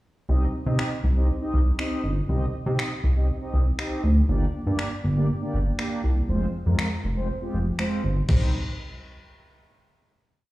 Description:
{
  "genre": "dance-pop",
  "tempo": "120 BPM",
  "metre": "4/4",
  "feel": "straight",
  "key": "C minor",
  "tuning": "A4 = 439 Hz",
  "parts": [
    { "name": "mellow synth brass", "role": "accompaniment", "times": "0.3-8.5 s", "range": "G3 to Eb5", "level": "-30 LUFS", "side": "equal", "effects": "chorus, sidechain pumping" },
    { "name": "chorused synth bass", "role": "bass", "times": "0.3-8.5 s", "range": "F1 to C3", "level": "-21 LUFS", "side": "equal", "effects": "sidechain pumping" },
    { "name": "detuned 8-bit digital drum machine", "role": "drums", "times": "0.8-8.4 s", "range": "crash cymbal, finger snaps, kick drum", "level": "-29 LUFS", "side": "equal", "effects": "none" }
  ],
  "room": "light reverb",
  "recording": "played on a big sound system in a bare room, large studio reverb, studio reverb",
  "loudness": "-22 LUFS",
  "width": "side -17 dB against mid",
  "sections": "0.3-8.3 verse; 8.3-10.3 final chord",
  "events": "none",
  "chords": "0.3 Cm; 4.3 Gm; 6.3 Fm; 8.3 Cm",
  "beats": "| 0.29 0.79 1.29 1.79 | 2.29 2.79 3.29 3.79 | 4.29 4.79 5.29 5.79 | 6.29 6.79 7.29 7.79 | 8.29"
}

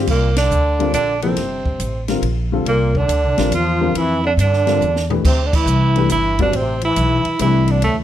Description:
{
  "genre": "modal jazz",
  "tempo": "140 BPM",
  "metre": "3/4",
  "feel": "swing 67% on 8ths",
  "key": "C mixolydian",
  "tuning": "A4 = 440 Hz",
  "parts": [
    { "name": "warm upright piano", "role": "accompaniment", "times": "0.0-8.0 s", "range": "C3 to D5", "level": "-22 LUFS", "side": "left 5 dB", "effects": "none" },
    { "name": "upright bass", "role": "bass", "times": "0.0-8.0 s", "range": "G1 to G2", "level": "-18 LUFS", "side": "equal", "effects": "none" },
    { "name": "warm tenor saxophone", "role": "melody", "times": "0.1-8.0 s", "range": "A3 to F4", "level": "-19 LUFS", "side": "right 3 dB", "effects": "none" },
    { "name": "trombone with plunger mute", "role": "second line", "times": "0.1-8.0 s", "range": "A2 to F3", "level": "-26 LUFS", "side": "left 3 dB", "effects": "none" },
    { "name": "compact cocktail drum kit", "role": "drums", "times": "0.1-8.0 s", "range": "crash cymbal, hi-hat, kick drum, ride cymbal, snare drum, toms", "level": "-24 LUFS", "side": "equal", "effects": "none" }
  ],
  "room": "light reverb",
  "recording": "none",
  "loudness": "-15 LUFS",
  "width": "side -11 dB against mid",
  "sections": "0.1-8.0 A section",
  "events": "band accent 0.3, 5.5; drum fill 4.8-5.2",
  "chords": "0.1 C9sus4; 5.2 D9sus4",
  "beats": "| 0.08 0.51 0.94 | 1.37 1.80 2.23 | 2.66 3.09 3.52 | 3.95 4.38 4.81 | 5.24 5.67 6.10 | 6.53 6.96 7.39 | 7.82"
}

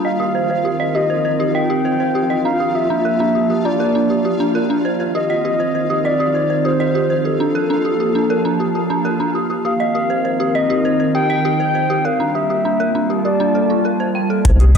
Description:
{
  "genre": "IDM",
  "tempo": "100 BPM",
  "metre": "4/4",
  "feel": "straight",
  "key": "C minor",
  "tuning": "A4 = 437 Hz",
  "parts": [
    { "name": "warbly nostalgic lead", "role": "melody", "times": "0.0-14.8 s", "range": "A4 to G5", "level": "-20 LUFS", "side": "left 2 dB", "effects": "chorus, dub echo" },
    { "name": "warbly tape-like pad", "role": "sustained chords", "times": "0.0-14.8 s", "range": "Eb3 to A5", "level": "-20 LUFS", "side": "right 1 dB", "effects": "chorus, built-in reverb" },
    { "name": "dark detuned synth bell", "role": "arpeggios", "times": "0.0-14.8 s", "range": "D4 to G5", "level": "-21 LUFS", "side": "right 1 dB", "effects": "chorus, phaser, low-pass filter, ping-pong delay" },
    { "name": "flickering grainy texture", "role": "texture", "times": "0.0-14.5 s", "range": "F4", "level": "-27 LUFS", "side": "right 1 dB", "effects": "built-in reverb, sidechain pumping" },
    { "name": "deep acid bass", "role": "bass", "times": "14.4-14.8 s", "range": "C2", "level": "-11 LUFS", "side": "equal", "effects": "none" },
    { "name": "electronic hi-hat", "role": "drums", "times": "14.4-14.8 s", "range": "none", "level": "-25 LUFS", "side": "left 1 dB", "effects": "overdrive" },
    { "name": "electronic kick drum", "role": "drums", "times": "14.4-14.8 s", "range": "none", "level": "-14 LUFS", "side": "equal", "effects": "overdrive" }
  ],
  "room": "moderate plate reverb, RT60 2.7 s",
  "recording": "dark, warm production",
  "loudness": "-15 LUFS",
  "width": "side -6 dB against mid",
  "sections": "0.0-14.4 A section",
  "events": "filter sweep on ambient pad 0.0-14.4",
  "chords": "0.1 Cm7; 2.5 Gm9; 4.8 Cm9; 7.2 Gm9; 9.7 Cm7; 12.1 Gm9",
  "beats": "| 0.05 0.65 1.25 1.85 | 2.45 3.05 3.65 4.25 | 4.85 5.45 6.05 6.65 | 7.25 7.85 8.45 9.05 | 9.65 10.25 10.85 11.45 | 12.05 12.65 13.25 13.85 | 14.45"
}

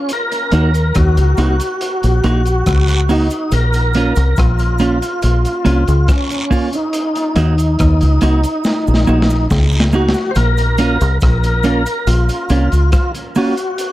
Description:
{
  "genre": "roots reggae",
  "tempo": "70 BPM",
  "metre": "4/4",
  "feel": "straight",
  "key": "Bb minor",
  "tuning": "A4 = 445 Hz",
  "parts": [
    { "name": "tonewheel organ", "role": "melody", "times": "0.0-13.9 s", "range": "Db4 to C5", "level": "-19 LUFS", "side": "equal", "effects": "overdrive, chorus vibrato, slow rotary speaker, dub echo" },
    { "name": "crunchy breakbeat drum kit", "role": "drums", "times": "0.1-13.9 s", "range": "hi-hat, kick drum, rim click, snare drum", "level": "-20 LUFS", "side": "equal", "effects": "none" },
    { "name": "cabasa and guiro", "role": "percussion", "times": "0.1-13.9 s", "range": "none", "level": "-29 LUFS", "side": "right 2 dB", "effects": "none" },
    { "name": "clean electric guitar", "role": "accompaniment", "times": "0.5-13.5 s", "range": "Bb3 to Gb4", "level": "-19 LUFS", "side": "right 3 dB", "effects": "dub echo" },
    { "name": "deep dub fingered electric bass", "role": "bass", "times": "0.5-12.9 s", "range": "Bb1 to Eb2", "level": "-13 LUFS", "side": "equal", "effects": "none" }
  ],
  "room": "little or no reverb",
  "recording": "dark, warm production",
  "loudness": "-12 LUFS",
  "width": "side -15 dB against mid",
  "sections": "0.0-10.4 A section; 10.4-13.9 B section",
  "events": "drum fill 8.7-10.4",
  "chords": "0.1 Ebm; 3.5 Bbm; 6.9 Ebm; 10.4 Bbm",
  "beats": "| 0.09 0.95 1.80 2.66 | 3.52 4.37 5.23 6.08 | 6.94 7.79 8.65 9.51 | 10.36 11.22 12.07 12.93 | 13.79"
}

